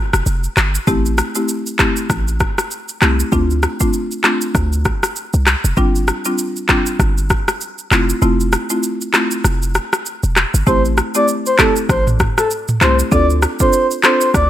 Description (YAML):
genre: afrobeats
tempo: 98 BPM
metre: 4/4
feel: swing 58% on 16ths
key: A minor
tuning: A4 = 439 Hz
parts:
  - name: warm 808-style bass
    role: bass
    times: 0.1-14.5 s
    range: E1 to D2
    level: -16 LUFS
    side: equal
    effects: none
  - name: afro-pop drum kit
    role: drums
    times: 0.1-14.5 s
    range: handclaps, kick drum, rim click, shaker, toms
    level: -16 LUFS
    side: equal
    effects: none
  - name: buzzing marimba with medium mallets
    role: accompaniment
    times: 0.9-14.3 s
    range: G3 to A4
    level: -20 LUFS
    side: left 1 dB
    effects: none
  - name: breathy flute-like synth lead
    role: melody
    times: 10.7-14.5 s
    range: A4 to D5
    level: -16 LUFS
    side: right 1 dB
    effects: chorus
room: digital ambience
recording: none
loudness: -13 LUFS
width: side -12 dB against mid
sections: 0.0-10.7 A section; 10.7-14.5 B section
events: kick muted 8.2-10.7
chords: 0.0 N.C.; 0.9 Am7; 3.3 Dm7; 5.8 G7sus4; 7.9 Fmaj7; 10.7 Am7; 13.1 Dm7